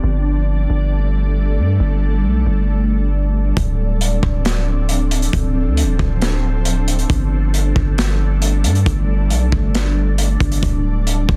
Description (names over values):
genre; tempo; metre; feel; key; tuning
hip hop, atmospheric cloud-rap; 136 BPM; 4/4; half-time; unclear; A4 = 440 Hz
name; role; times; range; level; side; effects
ethereal airy pad; sustained chords; 0.0-11.4 s; F3 to D5; -25 LUFS; equal; ensemble chorus, built-in reverb, phaser, low-pass filter
long sustained 808-style bass; bass; 0.0-11.4 s; D1 to G2; -19 LUFS; equal; none
crunchy breakbeat drum kit; drums; 3.6-11.4 s; hi-hat, kick drum, snare drum; -23 LUFS; equal; none
room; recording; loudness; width
studio reverb; dense, heavily limited modern master; -17 LUFS; mono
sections
0.0-3.6 A section; 3.6-11.4 B section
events
filter sweep on ambient pad 0.0-3.6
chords
0.0 Gsus2; 3.6 Dm7; 7.1 Gsus2; 10.6 Dm7